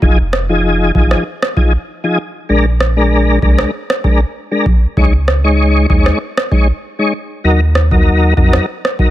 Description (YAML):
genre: dancehall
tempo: 97 BPM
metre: 4/4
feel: straight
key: F phrygian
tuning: A4 = 440 Hz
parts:
  - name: tonewheel organ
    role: accompaniment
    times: 0.0-9.1 s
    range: F3 to Db5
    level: -15 LUFS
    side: left 2 dB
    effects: chorus vibrato, fast rotary speaker
  - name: warm sub bass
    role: bass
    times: 0.0-8.6 s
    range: F1 to F2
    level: -14 LUFS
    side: equal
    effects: none
  - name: booming analog drum machine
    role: drums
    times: 0.0-9.1 s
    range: kick drum, rim click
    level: -13 LUFS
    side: equal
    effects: none
room: digital ambience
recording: none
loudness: -11 LUFS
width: side -14 dB against mid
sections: 0.0-9.1 A section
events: break 0.0-9.1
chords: 0.0 Fm7; 2.5 Bb7; 5.0 Dbsus2; 7.4 Ebm